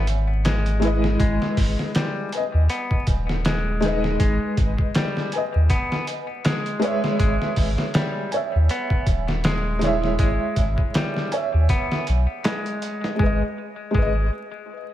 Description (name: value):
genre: trip hop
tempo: 80 BPM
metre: 4/4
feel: swing 57% on 16ths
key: unclear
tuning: A4 = 441 Hz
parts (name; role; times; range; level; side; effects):
- felt-muted upright piano; accompaniment; 0.0-14.3 s; G#3 to G#5; -26 LUFS; equal; tremolo, tape echo
- semi-hollow electric guitar; arpeggios; 0.0-14.3 s; G3 to B3; -29 LUFS; left 2 dB; vintage 12-bit sampler grit, ping-pong delay
- soft dub sub bass; bass; 0.0-14.3 s; D#1 to D#2; -21 LUFS; equal; none
- trip hop sampler-style drum kit; drums; 0.1-14.1 s; hi-hat, kick drum, snare drum; -23 LUFS; equal; none
room: light reverb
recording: vinyl crackle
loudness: -20 LUFS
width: side -12 dB against mid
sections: 0.0-13.2 A section; 13.2-14.9 B section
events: none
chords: 0.0 C#m; 13.2 G#m